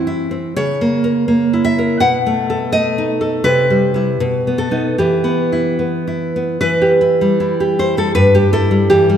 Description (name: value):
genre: romantic piece for solo classical guitar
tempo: 72-84 BPM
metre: 2/4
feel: rubato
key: E minor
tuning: A4 = 443 Hz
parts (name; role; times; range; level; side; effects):
- nylon-string guitar; solo; 0.0-9.2 s; G2 to F#5; -13 LUFS; equal; none
room: wet concert hall reverb, RT60 1.9 s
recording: recorded in a church or concert hall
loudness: -13 LUFS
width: side -9 dB against mid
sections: 0.0-6.6 A section; 6.6-9.2 A section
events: none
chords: 0.0 C/E; 0.5 C#m6; 2.0 B7; 3.5 C; 4.2 B7; 5.0 Em; 8.2 Em/G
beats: | 0.55 1.28 | 2.01 2.73 | 3.46 4.21 | 4.98 5.80 | 6.62 7.41 | 8.16 8.90